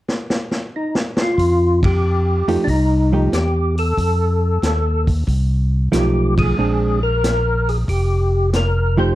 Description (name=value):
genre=soul jazz organ trio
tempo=92 BPM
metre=4/4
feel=swing 69% on 8ths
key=F mixolydian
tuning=A4 = 440 Hz
part: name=vintage drum kit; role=drums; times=0.1-8.7 s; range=hi-hat, kick drum, ride cymbal, snare drum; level=-22 LUFS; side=equal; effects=none
part: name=percussive tonewheel organ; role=melody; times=0.8-9.2 s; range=D4 to C5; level=-20 LUFS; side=left 1 dB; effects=slow rotary speaker, chorus vibrato
part: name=tonewheel organ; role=bass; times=1.4-9.1 s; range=F1 to F2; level=-18 LUFS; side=equal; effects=none
part: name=hollow-body jazz guitar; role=accompaniment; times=2.5-9.2 s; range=F3 to G4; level=-19 LUFS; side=right 3 dB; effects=none
room=moderate studio reverb, RT60 0.8 s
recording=dark, warm production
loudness=-15 LUFS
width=side -15 dB against mid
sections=0.0-1.4 A section; 1.4-9.2 B section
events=drum fill 0.1-1.4; band accent 1.7-2.0, 6.3-6.6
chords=0.0 N.C.; 1.4 F9; 6.6 Bb9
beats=0.09 0.74 | 1.39 2.03 2.68 3.33 | 3.98 4.63 5.28 5.93 | 6.58 7.23 7.88 8.54